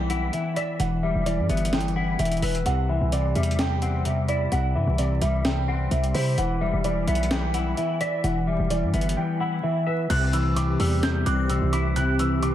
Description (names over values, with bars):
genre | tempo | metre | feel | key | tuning
hip hop, trap | 129 BPM | 4/4 | half-time | unclear | A4 = 440 Hz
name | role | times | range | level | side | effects
dark grand piano | melody | 0.0-12.5 s | B4 to G6 | -28 LUFS | right 1 dB | wide subtle chorus, low-pass filter, analog delay
semi-hollow electric guitar | accompaniment | 0.0-12.5 s | C3 to E5 | -26 LUFS | left 2 dB | ensemble chorus, low-pass filter
hard-hitting 808-style bass | bass | 0.0-12.5 s | E1 to C3 | -26 LUFS | equal | none
breakbeat sampler-style drum kit | drums | 0.1-12.5 s | crash cymbal, hi-hat, snare drum | -32 LUFS | equal | none
hollow soft pad | sustained chords | 10.2-12.5 s | E3 to G4 | -28 LUFS | right 1 dB | chorus
glassy synth bell | second line | 11.3-11.5 s | D6 | -37 LUFS | equal | chorus, analog delay
room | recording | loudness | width
moderate plate reverb, RT60 1.9 s, digital ambience | dreamy mix soaked in reverb, vinyl crackle | -22 LUFS | side -11 dB against mid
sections
0.0-10.1 A section; 10.1-12.5 B section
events
none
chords
0.0 Em; 2.7 C; 6.4 Em; 10.1 C